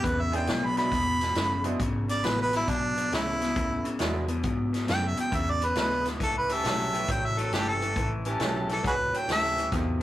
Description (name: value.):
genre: electric blues shuffle.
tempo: 136 BPM.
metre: 4/4.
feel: swing 66% on 8ths.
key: unclear.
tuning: A4 = 440 Hz.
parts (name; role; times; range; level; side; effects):
warm harmonica; melody; 0.0-9.7 s; D4 to B5; -28 LUFS; right 1 dB; none.
electric guitar through a small old amp; riff; 0.0-10.0 s; E2 to F#3; -32 LUFS; left 2 dB; spring reverb.
vintage muted fingered electric bass; bass; 0.0-10.0 s; E1 to G#2; -33 LUFS; equal; none.
vintage drum kit; drums; 0.0-9.9 s; hi-hat, kick drum, snare drum; -31 LUFS; equal; none.
bright upright piano; accompaniment; 0.3-10.0 s; G#3 to G#4; -35 LUFS; right 4 dB; none.
warm horn section; stabs; 6.5-9.7 s; C#4 to A4; -33 LUFS; equal; none.
room: moderate studio ambience, RT60 0.5 s.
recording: rough rehearsal-room recording, tube saturation.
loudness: -25 LUFS.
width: side -14 dB against mid.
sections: 0.0-10.0 A section.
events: none.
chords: 0.0 E7; 6.2 A7.